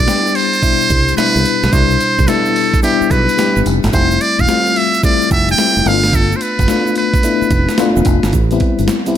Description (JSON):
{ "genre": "R&B, new jack swing", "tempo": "109 BPM", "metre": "4/4", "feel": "swing 66% on 16ths", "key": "unclear", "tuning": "A4 = 443 Hz", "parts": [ { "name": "trumpet with metal mute", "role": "melody", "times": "0.0-8.0 s", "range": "G4 to G5", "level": "-15 LUFS", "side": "right 2 dB", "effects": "ping-pong delay" }, { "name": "FM electric piano with auto-pan", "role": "accompaniment", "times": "0.0-9.2 s", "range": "B2 to G4", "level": "-16 LUFS", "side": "left 6 dB", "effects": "tube saturation" }, { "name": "fingered electric bass", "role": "bass", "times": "0.0-8.9 s", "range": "E1 to C2", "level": "-16 LUFS", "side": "right 1 dB", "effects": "none" }, { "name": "dusty soul sampler-style drum kit", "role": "drums", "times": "0.1-9.2 s", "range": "hi-hat, kick drum, snare drum, tambourine", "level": "-17 LUFS", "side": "right 1 dB", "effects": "none" }, { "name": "egg shaker", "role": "percussion", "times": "0.1-9.2 s", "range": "none", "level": "-32 LUFS", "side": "right 16 dB", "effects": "none" } ], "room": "little or no reverb", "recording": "none", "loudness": "-11 LUFS", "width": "side -10 dB against mid", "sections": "0.0-8.3 A section", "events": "none", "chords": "0.0 Cmaj7; 3.9 Fmaj7; 5.9 G7; 8.3 Am7" }